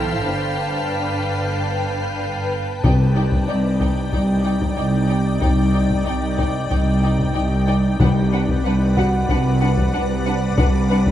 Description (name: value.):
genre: cinematic, suspense film score.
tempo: 93 BPM.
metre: 4/4.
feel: straight.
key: C hungarian minor.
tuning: A4 = 440 Hz.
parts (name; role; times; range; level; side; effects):
muted studio violin section; melody; 0.0-11.0 s; F#5 to G5; -32 LUFS; left 2 dB; none.
muted studio violin section; second line; 0.0-11.0 s; B4 to F5; -31 LUFS; right 1 dB; none.
muted studio viola section; accompaniment; 0.0-11.0 s; D4 to E4; -31 LUFS; equal; none.
soft additive organ-like pad; sustained chords; 0.0-11.1 s; Eb4 to A5; -26 LUFS; left 2 dB; ensemble chorus, built-in reverb.
muted studio cello section; bass; 0.0-11.1 s; C2 to E3; -22 LUFS; equal; none.
muted studio double bass section; bass; 0.0-11.1 s; G1 to C2; -22 LUFS; right 1 dB; none.
music box; texture; 0.0-10.9 s; F#4 to F#5; -30 LUFS; right 1 dB; none.
muted studio violin section; texture; 0.0-2.5 s; F6 to B6; -33 LUFS; left 4 dB; none.
solo taiko drums; drums; 2.8-11.1 s; none; -23 LUFS; left 1 dB; none.
timpani; percussion; 2.8-3.8, 8.0-8.9 s; C3; -22 LUFS; left 2 dB; none.
room: light reverb.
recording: none.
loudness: -17 LUFS.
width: side -12 dB against mid.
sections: 0.0-2.8 A section; 2.8-11.1 B section.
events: none.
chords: 0.3 G7; 2.8 Cmadd9; 8.0 D6/C.